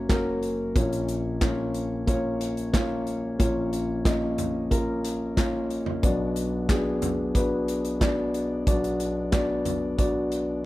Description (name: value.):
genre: piano-driven pop.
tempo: 91 BPM.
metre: 4/4.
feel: straight.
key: unclear.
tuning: A4 = 435 Hz.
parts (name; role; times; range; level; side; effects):
dark concert grand piano; accompaniment; 0.0-10.7 s; F#1 to D#5; -25 LUFS; left 1 dB; none.
modern studio drum kit; drums; 0.1-10.5 s; handclaps, hi-hat, kick drum, snare drum, toms; -26 LUFS; equal; none.
room: light reverb.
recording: none.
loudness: -24 LUFS.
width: side -17 dB against mid.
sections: 0.0-10.7 A section.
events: none.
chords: 0.0 F#; 0.8 A#m; 6.0 Bm.